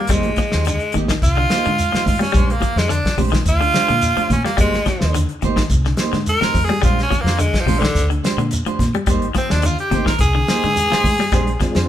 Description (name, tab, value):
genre	afrobeat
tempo	107 BPM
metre	4/4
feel	straight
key	unclear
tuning	A4 = 440 Hz
part	raspy tenor saxophone	melody	0.0-11.9 s	D3 to Bb4	-20 LUFS	right 1 dB	none
part	clean electric guitar	arpeggios	0.0-11.6 s	C3 to G3	-24 LUFS	left 6 dB	spring reverb
part	clean electric guitar	stabs	0.1-11.9 s	Ab3 to C5	-26 LUFS	right 6 dB	none
part	deep dub fingered electric bass	bass	0.1-11.9 s	Ab1 to Bb2	-21 LUFS	equal	none
part	warm soul drum kit	drums	0.1-11.9 s	hi-hat, kick drum, snare drum	-21 LUFS	equal	none
part	shekere	percussion	0.1-11.8 s	none	-26 LUFS	right 1 dB	none
part	congas	percussion	0.3-11.8 s	none	-25 LUFS	right 2 dB	none
part	tonewheel organ	accompaniment	11.3-11.9 s	Ab3 to G4	-24 LUFS	left 1 dB	slow rotary speaker, chorus vibrato
room	moderate studio reverb, RT60 0.8 s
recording	band playing live in one room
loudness	-15 LUFS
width	side -11 dB against mid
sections	0.0-11.9 A section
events	tenor saxophone solo 0.0-11.9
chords	0.1 Abmaj9; 2.4 Bb13; 4.6 Abmaj9; 6.8 Bb13; 9.1 Abmaj9; 11.3 Bb13